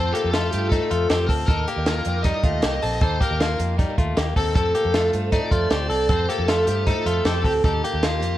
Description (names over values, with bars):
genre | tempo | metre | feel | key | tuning
jangly indie pop | 156 BPM | 4/4 | straight | F mixolydian | A4 = 439 Hz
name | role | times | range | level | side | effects
smooth overdriven lead guitar | melody | 0.0-8.4 s | G4 to Eb5 | -26 LUFS | left 2 dB | none
picked twelve-string acoustic guitar | accompaniment | 0.0-8.4 s | Eb3 to A4 | -28 LUFS | right 3 dB | none
direct-recorded clean electric guitar | arpeggios | 0.0-8.4 s | G3 to A4 | -26 LUFS | left 3 dB | none
vintage muted fingered electric bass | bass | 0.0-8.4 s | Bb1 to G2 | -25 LUFS | equal | none
compact cocktail drum kit | drums | 0.1-8.3 s | hi-hat, kick drum, snare drum | -23 LUFS | equal | none
room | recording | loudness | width
light reverb | worn, warbling old tape, cassette tape, warbly pitch drift | -19 LUFS | side -13 dB against mid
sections
0.0-8.4 A section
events
none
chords
0.0 F; 1.5 Eb; 4.6 F